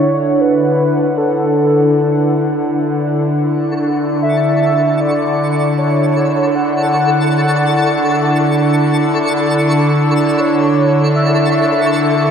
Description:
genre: ambient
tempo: free time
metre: none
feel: none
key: D major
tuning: A4 = 441 Hz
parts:
  - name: warm velvety synth lead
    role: melody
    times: 0.0-12.3 s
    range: A4 to F#5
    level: -17 LUFS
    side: equal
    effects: chorus, ping-pong delay
  - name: warbly tape-like pad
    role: sustained chords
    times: 0.0-12.3 s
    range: D3 to F#5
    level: -14 LUFS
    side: equal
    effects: chorus, built-in reverb
  - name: twinkling granular texture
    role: texture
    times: 3.7-12.3 s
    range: A4 to C#6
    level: -21 LUFS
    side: equal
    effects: built-in reverb
room: wet huge ambient reverb, RT60 8.0 s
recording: dark, warm production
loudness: -12 LUFS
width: side -7 dB against mid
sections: 0.0-12.3 A section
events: none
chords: 0.0 Dmaj7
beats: free time

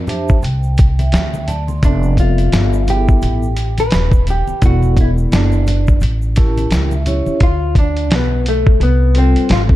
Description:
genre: hip hop, jazz-hop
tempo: 86 BPM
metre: 4/4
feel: swing 58% on 16ths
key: D dorian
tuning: A4 = 440 Hz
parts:
  - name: vibraphone with medium mallets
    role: accompaniment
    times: 0.0-9.8 s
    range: G3 to C6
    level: -22 LUFS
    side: equal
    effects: none
  - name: upright bass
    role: bass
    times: 0.0-9.8 s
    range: Eb1 to F2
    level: -15 LUFS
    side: equal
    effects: none
  - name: dusty soul sampler-style drum kit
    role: drums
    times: 0.1-9.8 s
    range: hi-hat, kick drum, snare drum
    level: -15 LUFS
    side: equal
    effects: none
  - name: congas and egg shaker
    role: percussion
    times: 0.1-7.4 s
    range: none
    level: -27 LUFS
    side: left 1 dB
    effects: none
  - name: vintage hollow-body jazz guitar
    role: melody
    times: 1.9-9.6 s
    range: A3 to B4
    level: -19 LUFS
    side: left 1 dB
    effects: none
room: small room ambience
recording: dark, warm production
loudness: -12 LUFS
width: side -15 dB against mid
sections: 0.0-7.4 A section; 7.4-9.8 A section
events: vibraphone fill 0.0-1.8, 6.0-7.4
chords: 0.4 Csus2; 1.8 Fmaj9#11; 4.6 Esus2; 6.0 A7b9; 7.4 Dm7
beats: 0.43 1.13 | 1.83 2.53 3.22 3.92 | 4.62 5.32 6.01 6.71 | 7.41 8.11 8.81 9.50

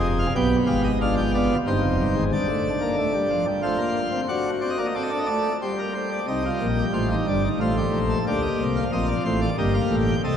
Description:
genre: classical, baroque-style 4-part fugue for pipe organ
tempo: 91 BPM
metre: 3/4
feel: straight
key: C minor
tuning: A4 = 440 Hz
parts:
  - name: pipe organ, plenum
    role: solo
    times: 0.0-10.4 s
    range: F1 to G5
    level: -21 LUFS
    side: equal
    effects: none
room: wet cathedral reverb, RT60 6.8 s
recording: dark, warm production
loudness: -21 LUFS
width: side -8 dB against mid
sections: 0.0-6.3 A section; 6.3-10.4 B section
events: none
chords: 0.3 G7; 1.7 Cm; 2.3 Gm; 3.6 Fadd11/A; 4.3 D7; 5.6 Gm; 6.3 Cm; 7.6 F/A; 8.3 Bb; 9.6 Eb/G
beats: | 0.35 1.00 1.66 | 2.31 2.97 3.63 | 4.30 4.96 5.62 | 6.28 6.95 7.61 | 8.28 8.93 9.59 | 10.24

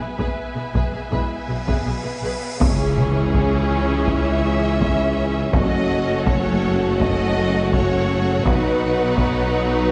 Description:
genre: cinematic, epic orchestral film score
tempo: 82 BPM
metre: 4/4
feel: straight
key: C# minor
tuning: A4 = 439 Hz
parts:
  - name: dark symphonic violin section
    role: melody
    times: 0.0-9.9 s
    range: G#4 to E5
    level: -29 LUFS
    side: equal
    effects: none
  - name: warm symphonic violin section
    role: second line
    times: 0.0-9.9 s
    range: C#4 to B4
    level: -31 LUFS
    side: equal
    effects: none
  - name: rich studio viola section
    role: accompaniment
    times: 0.0-9.9 s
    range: E3 to G#4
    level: -31 LUFS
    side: equal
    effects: none
  - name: rich symphonic string section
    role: sustained chords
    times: 0.0-9.9 s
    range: B3 to G#5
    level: -31 LUFS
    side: equal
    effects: none
  - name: rich symphonic double bass section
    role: bass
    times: 0.0-9.9 s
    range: F#1 to C#2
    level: -29 LUFS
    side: equal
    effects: none
  - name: warm symphonic cello section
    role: bass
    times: 0.0-9.9 s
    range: F#2 to C#3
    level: -29 LUFS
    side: equal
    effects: none
  - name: cymbal swell and impact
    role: sound effects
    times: 1.5-5.5 s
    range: none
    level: -35 LUFS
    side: equal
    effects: none
  - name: taiko ensemble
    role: drums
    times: 0.2-9.9 s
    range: none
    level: -25 LUFS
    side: equal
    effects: none
  - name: warm French horn section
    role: sustained chords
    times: 1.1-9.9 s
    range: F#3 to F#4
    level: -30 LUFS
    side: equal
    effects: none
  - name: mellow tuba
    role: bass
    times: 2.6-9.9 s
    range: F#1 to C#2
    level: -28 LUFS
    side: equal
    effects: none
room: moderate scoring stage reverb, RT60 1.6 s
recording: nothing above 10.3 kHz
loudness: -20 LUFS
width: mono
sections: 0.0-2.6 A section; 2.6-9.9 B section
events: cymbal swell 1.5-2.6; impact 2.6-5.5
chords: 0.0 E/B; 2.6 C#m; 5.5 F#m; 8.5 B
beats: 0.37 1.12 1.86 | 2.60 3.33 4.08 4.81 | 5.54 6.27 7.00 7.73 | 8.45 9.18 9.91

